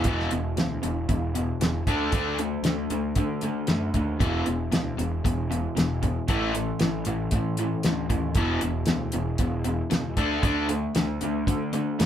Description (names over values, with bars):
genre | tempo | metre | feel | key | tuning
classic rock | 116 BPM | 4/4 | straight | unclear | A4 = 440 Hz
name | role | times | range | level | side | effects
cranked stack guitar | riff | 0.0-12.1 s | E2 to D4 | -29 LUFS | left 5 dB | overdrive
raw garage guitar | riff | 0.0-12.1 s | E2 to D4 | -30 LUFS | right 5 dB | overdrive
fuzz picked electric bass | bass | 0.0-12.1 s | E1 to D3 | -31 LUFS | equal | overdrive
damped 70s drum kit | drums | 0.0-12.1 s | hi-hat, kick drum, snare drum | -26 LUFS | equal | none
room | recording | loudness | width
wet studio ambience, RT60 0.5 s | band playing live in one room | -24 LUFS | side -10 dB against mid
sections
0.1-12.1 A section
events
none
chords
0.1 E5; 1.9 D5; 4.2 E5; 6.3 A5; 8.4 E5; 10.2 D5